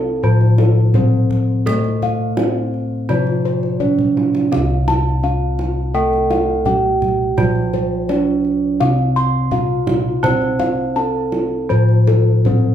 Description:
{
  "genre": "Javanese gamelan",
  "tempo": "84 BPM",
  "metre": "4/4",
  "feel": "straight",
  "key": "C pelog barang",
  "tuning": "A4 = 440 Hz",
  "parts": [
    { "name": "gamelan-type bronze metallophone", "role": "melody", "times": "0.0-12.7 s", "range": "A3+20c to C5", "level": "-21 LUFS", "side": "right 2 dB", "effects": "none" },
    { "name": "gamelan-type bronze metallophone", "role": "accompaniment", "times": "0.0-12.7 s", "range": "C3 to C4", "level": "-23 LUFS", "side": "right 3 dB", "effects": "none" },
    { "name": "gamelan-type bossed gongs", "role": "bass", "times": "0.0-12.7 s", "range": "C2 to C5", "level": "-18 LUFS", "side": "left 1 dB", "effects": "none" },
    { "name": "gamelan-type bossed gongs", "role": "arpeggios", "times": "0.2-12.7 s", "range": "A4+20c to C6", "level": "-22 LUFS", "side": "left 3 dB", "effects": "none" },
    { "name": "kendang", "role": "percussion", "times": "0.4-12.6 s", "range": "none", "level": "-23 LUFS", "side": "right 2 dB", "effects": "none" }
  ],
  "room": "moderate large studio reverb, RT60 0.7 s",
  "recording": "band playing live in one room",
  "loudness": "-14 LUFS",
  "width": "side -10 dB against mid",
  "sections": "0.0-12.7 A section",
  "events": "drum fill 3.8-4.5",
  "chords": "none",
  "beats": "0.24 0.95 | 1.67 2.38 3.09 3.81 | 4.52 5.24 5.95 6.67 | 7.38 8.09 8.81 9.52 | 10.24 10.96 11.70 12.46"
}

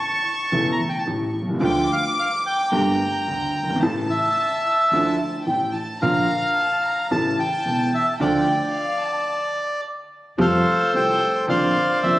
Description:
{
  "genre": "tango",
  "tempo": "110 BPM",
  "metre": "4/4",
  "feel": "rubato",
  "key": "D harmonic minor",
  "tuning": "A4 = 440 Hz",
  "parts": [
    { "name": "bandoneon", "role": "melody", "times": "0.0-12.2 s", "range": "A4 to Bb5", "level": "-21 LUFS", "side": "equal", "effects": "none" },
    { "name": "warm studio violin section", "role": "second line", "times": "0.0-9.3 s", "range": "F5 to D6", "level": "-27 LUFS", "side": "left 1 dB", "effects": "none" },
    { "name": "warm grand piano", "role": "accompaniment", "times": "0.5-12.2 s", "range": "E1 to G4", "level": "-22 LUFS", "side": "right 1 dB", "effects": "none" },
    { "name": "upright bass", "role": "bass", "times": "0.5-12.2 s", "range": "E1 to F2", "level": "-35 LUFS", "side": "equal", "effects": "none" }
  ],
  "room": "moderate scoring stage reverb, RT60 2.0 s",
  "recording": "recorded on a phone in the room, club reverb, compression",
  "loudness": "-19 LUFS",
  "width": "side -16 dB against mid",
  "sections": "0.0-10.4 A section; 10.4-12.2 B section",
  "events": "stop 9.3-10.4",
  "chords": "0.0 A; 1.6 Dm; 2.7 Gmadd9; 3.8 A; 4.9 Dmadd9; 6.0 Bb; 7.1 A; 8.2 Dm; 10.4 Fadd9; 11.5 Bbadd9",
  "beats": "0.52 1.07 | 1.62 2.17 2.72 3.27 | 3.82 4.37 4.91 5.46 | 6.01 6.55 7.10 7.65 | 8.20 8.74 9.29 9.84 | 10.39 10.94 11.49 12.03"
}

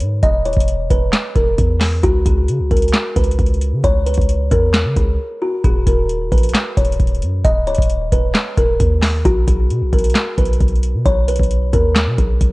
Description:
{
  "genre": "hip hop, trap",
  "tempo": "133 BPM",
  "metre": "4/4",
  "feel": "half-time",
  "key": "Eb phrygian",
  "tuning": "A4 = 440 Hz",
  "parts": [
    { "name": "kalimba", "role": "melody", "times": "0.0-12.5 s", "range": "Gb4 to Eb5", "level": "-20 LUFS", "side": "equal", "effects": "none" },
    { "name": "warm 808-style bass", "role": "bass", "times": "0.0-12.5 s", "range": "Db1 to Db3", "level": "-18 LUFS", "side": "equal", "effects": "none" },
    { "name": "booming analog drum machine", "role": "drums", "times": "0.0-12.5 s", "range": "handclaps, hi-hat, kick drum, snare drum", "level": "-16 LUFS", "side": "equal", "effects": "overdrive, vintage 12-bit sampler grit" }
  ],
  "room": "little or no reverb",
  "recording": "worn, warbling old tape, cassette tape, warbly pitch drift",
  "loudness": "-13 LUFS",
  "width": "side -21 dB against mid",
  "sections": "0.0-12.5 A section",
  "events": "break 5.2-5.6",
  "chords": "0.0 N.C.; 2.0 Db7(no3); 5.6 Eb5; 9.3 N.C.",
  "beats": "| 0.23 0.68 1.13 1.58 | 2.03 2.48 2.94 3.39 | 3.84 4.29 4.74 5.19 | 5.64 6.09 6.54 7.00 | 7.45 7.90 8.35 8.80 | 9.25 9.70 10.15 10.60 | 11.06 11.51 11.96 12.41"
}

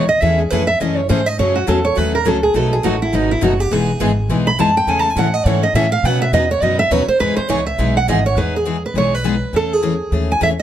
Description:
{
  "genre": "acoustic string swing (jazz manouche)",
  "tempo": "206 BPM",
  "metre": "4/4",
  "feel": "swing 57% on 8ths",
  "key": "E major",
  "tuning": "A4 = 441 Hz",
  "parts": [
    { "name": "picked steel-string acoustic guitar", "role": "melody", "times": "0.0-10.6 s", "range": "D#4 to B5", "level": "-17 LUFS", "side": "right 2 dB", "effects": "none" },
    { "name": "picked steel-string acoustic guitar", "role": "accompaniment", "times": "0.0-10.5 s", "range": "B2 to B4", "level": "-20 LUFS", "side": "left 6 dB", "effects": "none" },
    { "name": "picked steel-string acoustic guitar", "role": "accompaniment", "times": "0.0-8.2 s", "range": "B2 to B4", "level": "-25 LUFS", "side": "right 5 dB", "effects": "none" },
    { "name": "upright bass", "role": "bass", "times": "0.0-10.6 s", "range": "E1 to B2", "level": "-20 LUFS", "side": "equal", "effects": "none" }
  ],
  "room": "light reverb",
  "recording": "lossy compression artefacts",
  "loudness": "-14 LUFS",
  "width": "side -10 dB against mid",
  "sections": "0.0-8.4 A section; 8.4-10.6 B section",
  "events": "steel-string acoustic guitar solo 0.0-8.4",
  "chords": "0.2 Amaj7/E; 1.4 F#madd9; 2.5 B7; 3.7 Emaj7; 4.9 Amaj7; 6.0 Badd9; 7.2 Emaj7; 9.5 Amaj7/E",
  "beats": "| 0.22 0.51 0.81 1.10 | 1.39 1.68 1.97 2.26 | 2.55 2.84 3.13 3.42 | 3.71 4.00 4.29 4.58 | 4.88 5.17 5.46 5.75 | 6.04 6.33 6.62 6.91 | 7.20 7.49 7.78 8.07 | 8.37 8.66 8.95 9.24 | 9.53 9.82 10.12 10.41"
}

